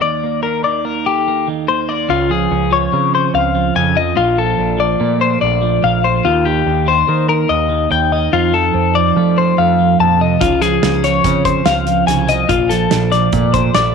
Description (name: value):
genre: math rock and midwest emo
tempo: 144 BPM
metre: 5/4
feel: straight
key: Eb lydian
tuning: A4 = 440 Hz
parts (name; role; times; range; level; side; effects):
- twelve-string electric guitar; accompaniment; 0.0-13.9 s; Eb2 to A4; -18 LUFS; right 14 dB; none
- twelve-string electric guitar; arpeggios; 0.0-13.9 s; F4 to A5; -15 LUFS; left 9 dB; spring reverb
- growling picked electric bass; bass; 2.1-13.9 s; Bb1 to F3; -19 LUFS; right 2 dB; overdrive
- loose indie drum kit; drums; 10.4-13.8 s; hi-hat, kick drum, snare drum; -20 LUFS; right 6 dB; none
room: light reverb, small room ambience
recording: 1960s-style stereo with parts hard left and right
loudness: -12 LUFS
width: side -6 dB against mid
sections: 0.0-2.1 A section; 2.1-13.9 B section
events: break 0.0-2.1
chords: 0.0 Ebmaj7; 2.1 Dbmaj7; 4.2 Bbmaj7; 6.2 Ebmaj7; 8.3 F7; 10.4 Dbmaj7; 12.5 Bbmaj7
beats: | 0.02 0.43 0.85 1.26 1.68 | 2.10 2.51 2.93 3.34 3.76 | 4.17 4.59 5.00 5.42 5.83 | 6.25 6.66 7.08 7.49 7.91 | 8.32 8.74 9.16 9.57 9.99 | 10.41 10.82 11.24 11.66 12.07 | 12.49 12.91 13.33 13.74